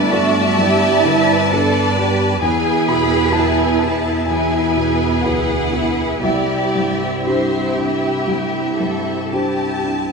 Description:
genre	cinematic, emotional film score for orchestra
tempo	56-66 BPM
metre	4/4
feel	rubato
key	unclear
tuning	A4 = 436 Hz
part	rich symphonic violin section	melody	0.0-10.1 s	E5 to B5	-25 LUFS	left 4 dB	none
part	clear symphonic violin section	second line	0.0-10.1 s	G4 to E5	-21 LUFS	right 1 dB	none
part	felt-muted upright piano	accompaniment	0.0-10.1 s	C2 to B5	-20 LUFS	left 2 dB	none
part	rich symphonic viola section	accompaniment	0.0-10.1 s	A3 to E4	-22 LUFS	right 4 dB	none
part	rich symphonic cello section	bass	0.0-9.8 s	E4 to B4	-23 LUFS	right 1 dB	none
part	rich symphonic double bass section	bass	0.0-10.0 s	C2 to G2	-24 LUFS	right 5 dB	none
room	moderate scoring stage reverb, RT60 1.7 s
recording	none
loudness	-15 LUFS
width	side -4 dB against mid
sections	0.0-10.1 A section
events	none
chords	0.0 Gadd9; 2.4 E; 6.2 Cadd9

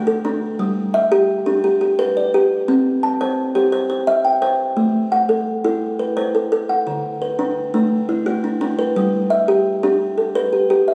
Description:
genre	southern african traditional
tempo	115 BPM (dotted quarters)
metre	12/8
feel	straight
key	A dorian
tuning	A4 = 441 Hz
part	kalimba	solo	0.0-10.9 s	D3 to A5	-18 LUFS	equal	none
room	moderate scoring stage reverb, RT60 2.1 s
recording	recorded on a phone in the room, club reverb, compression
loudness	-18 LUFS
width	mono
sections	0.0-4.8 A section; 4.8-10.9 A section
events	none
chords	0.0 D; 0.6 G; 2.7 C; 4.8 Am; 6.9 D; 9.0 G

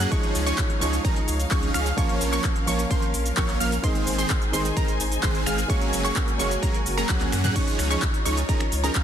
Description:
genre	EDM, festival progressive house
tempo	129 BPM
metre	4/4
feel	straight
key	Db major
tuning	A4 = 442 Hz
part	dark concert grand piano	accompaniment	0.0-7.6 s	Eb3 to F4	-32 LUFS	right 2 dB	sidechain pumping, digital delay
part	warm studio string section	sustained chords	0.0-9.0 s	Db4 to Ab5	-34 LUFS	left 3 dB	sidechain pumping
part	wide unison pluck	arpeggios	0.0-9.0 s	Bb5 to Gb6	-31 LUFS	right 1 dB	sidechain pumping, digital delay
part	supersaw chords	riff	0.0-9.0 s	Eb3 to Gb5	-28 LUFS	right 1 dB	sidechain pumping, digital delay
part	saturated sub bass	bass	0.0-9.0 s	Gb1 to Gb2	-27 LUFS	equal	sidechain pumping
part	big-room dance drum kit	drums	0.0-9.0 s	crash cymbal, finger snaps, handclaps, hi-hat, shaker, toms	-30 LUFS	equal	none
part	electronic kick drum	drums	0.1-9.0 s	none	-25 LUFS	equal	none
room	light reverb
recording	dense, heavily limited modern master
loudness	-21 LUFS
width	side -9 dB against mid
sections	0.0-7.6 A section; 7.6-9.0 A section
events	drop 0.0-7.6, 7.6-9.0; drum fill 7.1-7.6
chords	0.1 Dbadd9; 2.0 Bbm; 3.8 Ab; 5.7 Gbadd9; 7.6 Dbadd9

